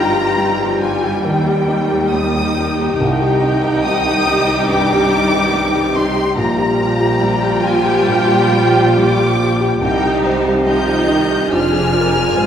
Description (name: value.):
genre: cinematic, emotional film score for orchestra.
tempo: 70 BPM.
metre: 4/4.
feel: rubato.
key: C minor.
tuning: A4 = 440 Hz.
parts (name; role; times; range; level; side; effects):
warm symphonic violin section; melody; 0.0-12.5 s; G5 to G6; -21 LUFS; left 2 dB; none.
warm studio violin section; second line; 0.0-12.5 s; G4 to Ab5; -21 LUFS; left 2 dB; none.
felt-muted upright piano; accompaniment; 0.0-12.5 s; Bb1 to Ab4; -19 LUFS; equal; none.
rich symphonic viola section; accompaniment; 0.0-12.5 s; Eb3 to F4; -20 LUFS; right 2 dB; none.
warm French horn section; sustained chords; 0.0-12.5 s; Eb3 to G4; -22 LUFS; left 1 dB; none.
dark studio double bass section; bass; 0.0-12.5 s; F1 to Eb2; -24 LUFS; right 1 dB; none.
dark symphonic cello section; bass; 0.0-12.5 s; Eb2 to C3; -23 LUFS; right 1 dB; none.
room: wet scoring stage reverb, RT60 2.0 s.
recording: heard from further back in the room.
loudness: -13 LUFS.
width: side -8 dB against mid.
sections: 0.0-12.5 A section.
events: none.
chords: 0.0 Gm7; 1.2 Eb; 3.0 Cm; 6.4 Gm7/Bb; 9.8 Cm; 11.5 Fm.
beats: 0.37 1.24 2.13 | 2.99 3.84 4.69 5.54 | 6.38 7.22 8.08 8.96 | 9.81 10.66 11.51 12.36.